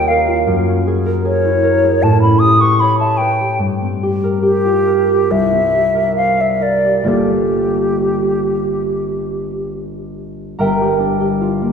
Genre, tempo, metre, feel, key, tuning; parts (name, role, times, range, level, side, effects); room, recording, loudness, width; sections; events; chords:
classical, impressionist duo for flute and harp; 65-78 BPM; 4/4; rubato; G dorian; A4 = 439 Hz
hollow concert flute; melody; 0.0-9.7 s; G4 to Eb6; -15 LUFS; equal
concert harp; accompaniment; 0.0-11.7 s; G1 to Bb5; -16 LUFS; equal
wet scoring stage reverb, RT60 1.9 s; heard from further back in the room; -13 LUFS; side -6 dB against mid
0.0-10.6 A section; 10.6-11.7 B section
0.5 F#9; 2.0 A9; 3.6 Gm7; 5.3 C9; 7.1 Gm9; 10.6 Gm7